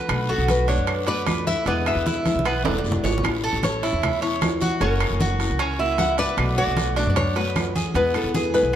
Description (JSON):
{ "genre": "latin, Cuban son and guajira", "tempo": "153 BPM", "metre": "4/4", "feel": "straight", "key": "A major", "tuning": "A4 = 440 Hz", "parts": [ { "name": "fingerpicked old ladder-braced acoustic guitar", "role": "accompaniment", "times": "0.0-8.8 s", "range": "B2 to F#4", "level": "-30 LUFS", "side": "left 4 dB", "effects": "none" }, { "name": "Cuban tres", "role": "arpeggios", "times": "0.0-8.8 s", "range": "B3 to C#5", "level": "-26 LUFS", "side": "right 3 dB", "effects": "none" }, { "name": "upright bass", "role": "bass", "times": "0.1-8.8 s", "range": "E1 to F#2", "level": "-26 LUFS", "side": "equal", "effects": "none" }, { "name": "claves", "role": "percussion", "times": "0.1-8.3 s", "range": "none", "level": "-35 LUFS", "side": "left 1 dB", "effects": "none" }, { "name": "congas", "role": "percussion", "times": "0.1-8.7 s", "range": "none", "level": "-29 LUFS", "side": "equal", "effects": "none" }, { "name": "guiro", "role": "percussion", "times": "0.1-8.7 s", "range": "none", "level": "-36 LUFS", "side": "left 5 dB", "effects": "none" }, { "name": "timbales", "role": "percussion", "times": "0.1-8.6 s", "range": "none", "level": "-30 LUFS", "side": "right 8 dB", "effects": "none" }, { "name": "nylon-string guitar", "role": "melody", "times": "0.3-8.8 s", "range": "G#4 to F#5", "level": "-26 LUFS", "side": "left 2 dB", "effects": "none" } ], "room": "moderate plate reverb, RT60 2.8 s", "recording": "heard from further back in the room", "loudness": "-20 LUFS", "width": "side -10 dB against mid", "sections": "0.0-3.2 A section; 3.2-8.8 A section", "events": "drum fill 2.3-3.2, 8.5", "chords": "0.1 Bm7; 1.7 E7; 3.2 Aadd9; 4.8 F#7; 6.4 Bm7; 7.9 E" }